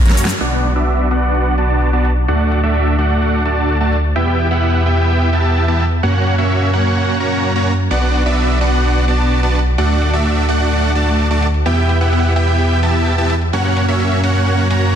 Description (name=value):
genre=EDM, festival progressive house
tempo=128 BPM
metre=4/4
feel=straight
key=B minor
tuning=A4 = 444 Hz
part: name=dense compressed supersaw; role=riff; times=0.0-15.0 s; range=A3 to A#5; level=-16 LUFS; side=right 1 dB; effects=low-pass filter, ping-pong delay
part: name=wide detuned saw bass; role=bass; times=0.0-15.0 s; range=B1 to F#2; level=-16 LUFS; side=equal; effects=chorus
part: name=big-room dance drum kit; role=drums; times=0.1-14.9 s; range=crash cymbal, hi-hat, shaker, snare drum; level=-26 LUFS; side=equal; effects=overdrive, low-pass filter on hats, studio reverb, low-pass filter on perc, low-pass filter on snare, low-pass filter on cymbals
room=light reverb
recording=dense, heavily limited modern master, faint mains hum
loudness=-13 LUFS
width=side -8 dB against mid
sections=0.4-15.0 A section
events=drum fill 0.0-0.4; band accent 0.3; filter sweep on supersaw synth 0.4-15.0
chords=0.4 Bm; 2.3 D; 4.2 Em; 6.0 F#; 7.9 Bm; 9.8 D; 11.7 Em; 13.5 F#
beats=| 0.41 0.88 1.34 1.81 | 2.28 2.75 3.22 3.69 | 4.16 4.63 5.09 5.56 | 6.03 6.50 6.97 7.44 | 7.91 8.38 8.85 9.31 | 9.78 10.25 10.72 11.19 | 11.66 12.13 12.60 13.06 | 13.53 14.00 14.47 14.94